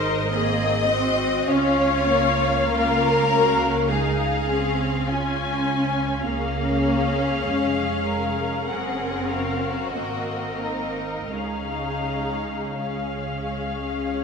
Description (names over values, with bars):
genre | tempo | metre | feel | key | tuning
classical, slow romantic movement for string orchestra | 41-52 BPM | 4/4 | rubato | Db major | A4 = 439 Hz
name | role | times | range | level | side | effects
rich symphonic violin section | melody | 0.0-14.2 s | Eb5 to Ab5 | -29 LUFS | left 4 dB | none
warm studio violin section | second line | 0.0-14.2 s | Db4 to Eb5 | -25 LUFS | left 2 dB | none
rich symphonic viola section | accompaniment | 0.0-14.2 s | C4 to Bb4 | -28 LUFS | left 2 dB | none
rich symphonic cello section | bass | 0.0-14.2 s | Ab3 to Db4 | -29 LUFS | right 3 dB | none
warm symphonic double bass section | bass | 0.0-14.2 s | F1 to Db2 | -29 LUFS | right 4 dB | none
room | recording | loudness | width
wet scoring stage reverb, RT60 1.6 s | none | -21 LUFS | side -5 dB against mid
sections
0.0-14.2 A section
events
none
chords
0.0 Ab; 1.5 Db; 8.7 Gb; 10.0 Ab9; 11.3 Db